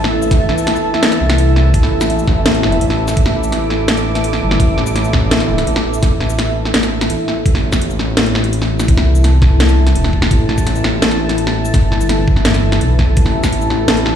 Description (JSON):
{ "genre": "half-time drum and bass", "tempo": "168 BPM", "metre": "4/4", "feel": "half-time", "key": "A minor", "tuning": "A4 = 439 Hz", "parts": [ { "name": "dark analog pad", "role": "sustained chords", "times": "0.0-14.2 s", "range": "E3 to D6", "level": "-19 LUFS", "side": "equal", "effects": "chorus, vintage 12-bit sampler grit, sidechain pumping" }, { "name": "dark detuned saw bass", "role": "bass", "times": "0.0-14.2 s", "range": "E1 to C2", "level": "-16 LUFS", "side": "equal", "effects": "none" }, { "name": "drum and bass drum kit", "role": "drums", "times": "0.0-14.1 s", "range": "hi-hat, shaker, snare drum", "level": "-17 LUFS", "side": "left 1 dB", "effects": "none" }, { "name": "pulsing gated texture", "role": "texture", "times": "0.0-7.5 s", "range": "E5", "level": "-26 LUFS", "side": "right 3 dB", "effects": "chorus, built-in reverb" }, { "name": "electronic kick drum", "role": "drums", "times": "0.3-13.5 s", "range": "none", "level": "-14 LUFS", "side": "equal", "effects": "none" } ], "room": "light reverb", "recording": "played on a big sound system in a bare room, large studio reverb", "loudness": "-12 LUFS", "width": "side -9 dB against mid", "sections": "0.0-7.5 A section; 7.5-14.2 A section", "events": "drop 0.0-7.5, 7.5-14.2; break 7.1-7.5", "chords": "0.0 A5" }